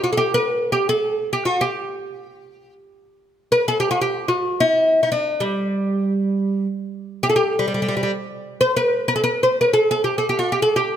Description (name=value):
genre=Arabic maqam ensemble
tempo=free time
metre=none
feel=none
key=G maqam huzam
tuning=A4 = 441 Hz
part: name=oud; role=solo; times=0.0-11.0 s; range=G3 to C5-40c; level=-18 LUFS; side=equal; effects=none
room=light reverb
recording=close, detailed microphones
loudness=-18 LUFS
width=side -9 dB against mid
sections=0.0-8.3 A section; 8.3-11.0 A section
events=none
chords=none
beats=free time